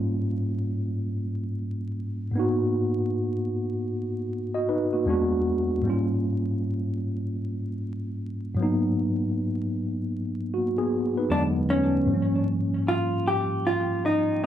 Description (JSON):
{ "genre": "hip hop", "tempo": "77 BPM", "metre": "4/4", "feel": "swing 62% on 16ths", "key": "G# dorian", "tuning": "A4 = 438 Hz", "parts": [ { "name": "tine electric piano", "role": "accompaniment", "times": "0.0-14.5 s", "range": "E2 to D#5", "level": "-25 LUFS", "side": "equal", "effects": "overdrive, fast stereo tremolo, low-pass filter" }, { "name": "vintage hollow-body jazz guitar", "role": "melody", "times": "11.3-14.4 s", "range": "C#4 to G4", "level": "-24 LUFS", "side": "equal", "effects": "low-pass filter, tape echo" } ], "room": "wet small room reverb, RT60 0.5 s", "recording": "vinyl crackle", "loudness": "-24 LUFS", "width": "side -11 dB against mid", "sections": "0.0-12.1 A section; 12.1-14.5 B section", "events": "none", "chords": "0.0 A#m7/G#; 2.4 G#m9; 5.1 E9; 5.9 A#m7/G#; 8.6 G#m9; 11.3 E9; 12.1 D#9 (rootless)", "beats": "0.40 1.18 1.96 | 2.74 3.52 4.30 5.08 | 5.86 6.63 7.42 8.19 | 8.97 9.75 10.53 11.31 | 12.09 12.87 13.65 14.43" }